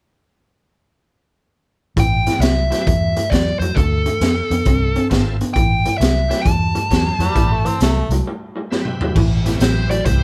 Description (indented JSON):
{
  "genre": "electric blues shuffle",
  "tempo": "134 BPM",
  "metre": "4/4",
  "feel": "swing 66% on 8ths",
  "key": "A minor",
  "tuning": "A4 = 441 Hz",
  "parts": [
    { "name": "dark smooth lead guitar", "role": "melody", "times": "2.0-10.2 s", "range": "A4 to A5", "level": "-24 LUFS", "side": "equal", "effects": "overdrive" },
    { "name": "electric guitar through a small old amp", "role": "riff", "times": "2.0-10.2 s", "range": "A2 to C4", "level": "-26 LUFS", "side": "equal", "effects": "spring reverb" },
    { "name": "vintage muted fingered electric bass", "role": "bass", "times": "2.0-10.2 s", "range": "G#1 to F2", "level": "-21 LUFS", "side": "equal", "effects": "none" },
    { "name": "raw garage drum kit", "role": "drums", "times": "2.0-10.2 s", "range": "crash cymbal, hi-hat, kick drum, snare drum, toms", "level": "-22 LUFS", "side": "equal", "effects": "none" },
    { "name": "bright tonewheel organ", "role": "accompaniment", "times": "2.7-10.2 s", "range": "C4 to C5", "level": "-34 LUFS", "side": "equal", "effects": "slow rotary speaker, overdrive, chorus vibrato" },
    { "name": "edgy tenor saxophone", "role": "second line", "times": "7.2-8.1 s", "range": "G3 to C4", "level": "-26 LUFS", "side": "equal", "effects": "none" }
  ],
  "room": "light reverb",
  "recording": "band playing live in one room",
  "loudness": "-17 LUFS",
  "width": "mono",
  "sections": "2.0-9.2 A section; 9.2-10.2 B section",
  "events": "break 8.3-9.2; drum fill 8.7-9.2",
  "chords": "2.0 Am7; 3.8 Dm7; 5.6 Am7"
}